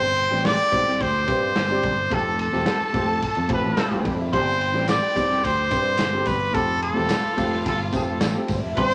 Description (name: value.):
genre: uptempo 1960s-style soul.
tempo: 108 BPM.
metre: 4/4.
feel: straight.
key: unclear.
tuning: A4 = 439 Hz.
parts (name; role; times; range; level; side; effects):
bright trumpet; melody; 0.0-8.9 s; A4 to D5; -25 LUFS; equal; none.
glockenspiel with hard plastic mallets; second line; 0.0-8.9 s; A5 to D6; -34 LUFS; equal; none.
warm symphonic violin section; second line; 0.0-8.9 s; A3 to A5; -35 LUFS; equal; none.
warm upright piano; accompaniment; 0.0-8.9 s; G3 to D5; -30 LUFS; equal; none.
fingered electric bass; bass; 0.0-8.9 s; E1 to G2; -30 LUFS; equal; none.
raw garage drum kit; drums; 0.2-8.9 s; hi-hat, kick drum, ride cymbal, snare drum; -30 LUFS; equal; none.
dark horn section; second line; 2.7-4.3 s; F3 to C5; -36 LUFS; equal; none.
tambourine and handclaps; percussion; 4.6-8.6 s; none; -41 LUFS; equal; none.
room: moderate studio ambience, RT60 0.5 s.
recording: none.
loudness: -22 LUFS.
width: mono.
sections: 0.0-8.9 A section.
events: band accent 2.1-4.3.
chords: 0.0 Gsus4; 2.1 Fadd9; 4.3 Gsus4; 6.5 Fadd9.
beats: 0.45 1.00 1.56 | 2.11 2.66 3.22 3.77 | 4.32 4.88 5.43 5.99 | 6.55 7.10 7.66 8.22 | 8.77.